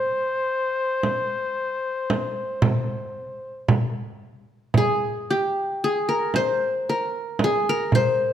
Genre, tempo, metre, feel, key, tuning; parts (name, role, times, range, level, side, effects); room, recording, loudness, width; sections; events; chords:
Turkish makam ensemble; 113 BPM (eighths); 10/8; straight; A4 = 440 Hz
qanun; melody; 0.0-8.3 s; G4 to C5; -22 LUFS; left 1 dB
breathy flugelhorn; second line; 0.0-3.7 s; C5; -25 LUFS; left 2 dB
frame drum; percussion; 1.0-8.2 s; -22 LUFS; right 3 dB
wet recital hall reverb, RT60 1.4 s; close, detailed microphones; -21 LUFS; side -10 dB against mid
0.0-4.7 A section; 4.7-8.3 B section